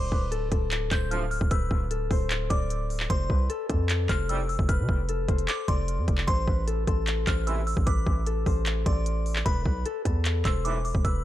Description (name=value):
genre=hip hop, trap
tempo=151 BPM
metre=4/4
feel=half-time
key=A minor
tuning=A4 = 440 Hz
part: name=concert harp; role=melody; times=0.0-11.2 s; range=A4 to D5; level=-33 LUFS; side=left 6 dB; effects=none
part: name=delicate synth tine bell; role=second line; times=0.0-11.2 s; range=B5 to G6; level=-35 LUFS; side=left 1 dB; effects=chorus, ping-pong delay
part: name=hard-hitting 808-style bass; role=bass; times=0.0-11.2 s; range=D1 to C3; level=-28 LUFS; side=equal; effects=none
part: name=trap drum kit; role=drums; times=0.1-11.1 s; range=handclaps, hi-hat, kick drum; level=-27 LUFS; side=equal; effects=vintage 12-bit sampler grit
part: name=warm brass ensemble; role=stabs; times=1.1-1.2, 4.3-4.4, 7.5-7.6, 10.7-10.8 s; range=B1 to G3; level=-38 LUFS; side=right 5 dB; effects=ping-pong delay
room=digital ambience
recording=dark, warm production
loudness=-24 LUFS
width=side -14 dB against mid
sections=0.0-11.2 A section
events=none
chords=0.0 D5; 3.1 F; 6.3 Amadd9; 9.5 Esus4